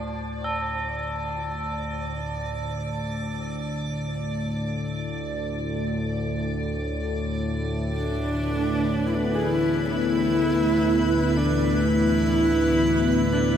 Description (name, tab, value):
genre	dark ambient drone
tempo	free time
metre	none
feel	none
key	unclear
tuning	A4 = 441 Hz
part	tubular bells	arpeggios	0.0-8.0 s	C4 to A4	-33 LUFS	right 1 dB	shimmer reverb, diffuse ambient delay
part	analog drone	drone	0.0-13.6 s	D2 to A2	-26 LUFS	equal	chorus
part	icy glass pad	texture	0.0-13.6 s	B4 to D5	-32 LUFS	right 1 dB	chorus, built-in reverb, shimmer reverb
part	warm horsehead fiddle	melody	7.9-13.6 s	B3 to G#4	-23 LUFS	right 1 dB	shimmer reverb, diffuse ambient delay
part	sweeping resonant pad	sustained chords	8.0-13.6 s	E3 to E4	-28 LUFS	left 2 dB	lush chorus
room	wet huge ambient reverb, RT60 7.5 s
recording	none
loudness	-22 LUFS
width	side -9 dB against mid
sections	0.0-13.6 A section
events	fade-in on synth drone 0.0-13.6; fade-in on ambient pad 0.0-13.6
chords	0.0 D5; 7.9 E5